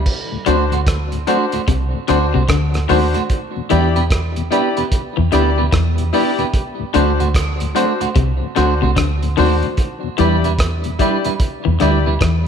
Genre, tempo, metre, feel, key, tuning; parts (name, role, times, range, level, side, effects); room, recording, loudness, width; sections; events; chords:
roots reggae; 74 BPM; 4/4; swing 63% on 16ths; A4 = 438 Hz
deep dub fingered electric bass; bass; 0.0-12.5 s; C2 to E2; -17 LUFS; right 1 dB
cloth-damped thuddy drum kit; drums; 0.1-12.5 s; crash cymbal, hi-hat, kick drum, rim click; -20 LUFS; right 1 dB
mellow tonewheel organ; accompaniment; 0.3-12.1 s; D2 to E4; -26 LUFS; left 8 dB; overdrive, chorus vibrato, slow rotary speaker, tape echo
clean electric guitar; accompaniment; 0.5-12.1 s; G3 to C5; -21 LUFS; right 10 dB; spring reverb, tape echo
electric guitar at the edge of break-up; riff; 0.5-12.4 s; C3 to E3; -23 LUFS; left 10 dB
bright upright piano; stabs; 0.5-12.1 s; D4 to D5; -22 LUFS; left 11 dB
moderate echo chamber reverb, RT60 2.1 s; 1960s-style stereo with parts hard left and right; -14 LUFS; side -7 dB against mid
0.1-12.5 A section
0.1 D7; 3.3 Em7; 6.5 D7; 9.8 Em7